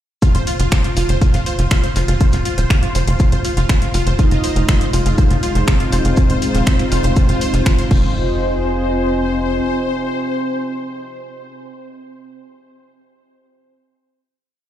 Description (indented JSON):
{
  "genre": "melodic techno",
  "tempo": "121 BPM",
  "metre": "4/4",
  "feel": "straight",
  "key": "F minor",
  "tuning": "A4 = 440 Hz",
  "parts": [
    { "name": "wide unison pluck", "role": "arpeggios", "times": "0.2-8.4 s", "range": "F4 to C6", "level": "-23 LUFS", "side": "right 1 dB", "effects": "phaser, sidechain pumping, tape echo" },
    { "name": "damped 70s drum kit", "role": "drums", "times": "0.2-7.9 s", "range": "hi-hat, shaker, snare drum", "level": "-36 LUFS", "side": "left 1 dB", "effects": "none" },
    { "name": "deep house drum kit", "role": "drums", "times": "0.2-8.0 s", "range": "crash cymbal, finger snaps, hi-hat", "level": "-26 LUFS", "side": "left 1 dB", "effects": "overdrive, sidechain pumping on hats, sidechain pumping on cymbals" },
    { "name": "electronic kick drum", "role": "drums", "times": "0.2-8.0 s", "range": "none", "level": "-14 LUFS", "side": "equal", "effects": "none" },
    { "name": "tight sequencer bass", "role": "bass", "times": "0.3-9.6 s", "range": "Eb1 to F1", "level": "-17 LUFS", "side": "equal", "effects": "sidechain pumping" },
    { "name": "soft octave-layered synth lead", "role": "melody", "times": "4.2-11.6 s", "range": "C4 to Eb4", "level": "-23 LUFS", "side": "equal", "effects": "chorus, phaser, tape echo" },
    { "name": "big bright polysynth", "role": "second line", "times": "4.2-11.6 s", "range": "C5 to Eb5", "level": "-26 LUFS", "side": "left 4 dB", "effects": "chorus, sidechain pumping, tape echo" },
    { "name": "dark analog pad", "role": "sustained chords", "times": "4.2-11.6 s", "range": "Ab3 to Ab5", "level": "-24 LUFS", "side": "equal", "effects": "chorus, sidechain pumping" }
  ],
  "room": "digital ambience",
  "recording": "played on a big sound system in a bare room, large studio reverb",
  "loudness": "-14 LUFS",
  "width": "side -12 dB against mid",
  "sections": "0.2-8.2 drop; 8.2-12.1 final hit",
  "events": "drop 0.2-8.2",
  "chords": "0.2 Fm7"
}